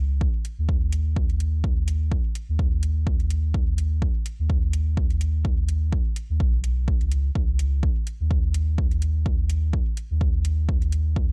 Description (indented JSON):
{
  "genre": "dub techno",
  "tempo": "126 BPM",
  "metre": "4/4",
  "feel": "swing 56% on 16ths",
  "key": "unclear",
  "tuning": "A4 = 438 Hz",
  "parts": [
    { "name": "soft dub sub bass", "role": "bass", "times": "0.0-11.3 s", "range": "B1 to D#2", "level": "-25 LUFS", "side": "equal", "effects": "transformer saturation, sidechain pumping" },
    { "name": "electronic kick drum", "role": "drums", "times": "0.2-11.3 s", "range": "none", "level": "-27 LUFS", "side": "equal", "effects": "overdrive" },
    { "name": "electronic hi-hat", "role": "drums", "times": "0.4-11.0 s", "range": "none", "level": "-42 LUFS", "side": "equal", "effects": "overdrive" }
  ],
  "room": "little or no reverb",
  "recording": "dry, gritty hardware recording, cassette tape",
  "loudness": "-24 LUFS",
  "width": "mono",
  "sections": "0.0-11.3 A section",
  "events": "none",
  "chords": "none"
}